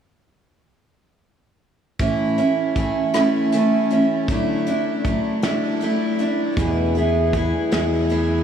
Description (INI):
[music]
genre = folk rock and heartland rock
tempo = 52 BPM (dotted quarters)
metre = 6/8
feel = straight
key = A major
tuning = A4 = 440 Hz
[part]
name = picked steel-string acoustic guitar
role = accompaniment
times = 2.0-8.4 s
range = E2 to G#4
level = -19 LUFS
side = right 1 dB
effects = lush chorus
[part]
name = soft brush drum kit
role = drums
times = 2.0-8.3 s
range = hi-hat, kick drum, rim click, snare drum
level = -27 LUFS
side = equal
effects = none
[part]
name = fingered electric bass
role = bass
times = 6.6-8.4 s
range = E2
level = -21 LUFS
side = equal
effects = none
[sound]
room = wet huge ambient reverb, RT60 8.0 s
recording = dreamy mix soaked in reverb, studio reverb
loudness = -18 LUFS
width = side -8 dB against mid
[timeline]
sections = 2.0-8.4 A section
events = none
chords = 2.0 A; 4.3 Dadd9; 6.6 E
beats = | 2.00 3.14 | 4.29 5.43 | 6.57 7.72